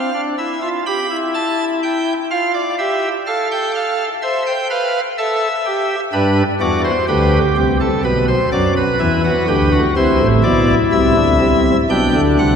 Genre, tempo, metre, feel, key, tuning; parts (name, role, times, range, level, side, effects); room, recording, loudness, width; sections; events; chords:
classical, baroque-style 4-part fugue for pipe organ; 62 BPM; 4/4; straight; A4 = 440 Hz
pipe organ, cornet; solo; 0.0-12.6 s; A1 to B5; -14 LUFS; equal
wet cathedral reverb, RT60 5.0 s; recorded in a church or concert hall; -14 LUFS; side -7 dB against mid
0.0-12.6 A section
0.4 Emadd11; 2.3 Dm/F; 4.2 C; 6.1 G; 8.0 G/B; 10.0 Am; 11.9 G/B